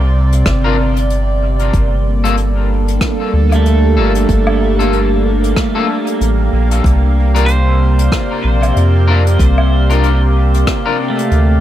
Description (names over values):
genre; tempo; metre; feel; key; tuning
ambient dub; 94 BPM; 4/4; swing 58% on 16ths; G minor; A4 = 440 Hz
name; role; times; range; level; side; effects
warbly tape-like pad; sustained chords; 0.0-11.6 s; C3 to F5; -18 LUFS; right 1 dB; chorus, built-in reverb, phaser
pedal steel guitar; arpeggios; 0.0-11.6 s; A3 to C5; -23 LUFS; right 1 dB; dub echo
soft dub sub bass; bass; 0.0-11.6 s; G1 to F2; -12 LUFS; equal; none
jazz brush drum kit; drums; 0.3-11.5 s; hi-hat, rim click, woodblock; -24 LUFS; left 2 dB; dub echo
electronic kick drum; drums; 0.5-10.8 s; none; -17 LUFS; equal; none
electric guitar at the edge of break-up; stabs; 0.6-11.0 s; Bb3 to Bb4; -22 LUFS; left 5 dB; wide subtle chorus, dub echo
bubbling stepped-filter texture; texture; 1.7-11.6 s; Bb3; -22 LUFS; right 1 dB; chorus, built-in reverb
room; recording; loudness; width
light reverb, small room reverb; echo-heavy mix; -11 LUFS; side -12 dB against mid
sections
0.0-11.6 A section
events
none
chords
0.0 Gm9; 6.8 C9sus4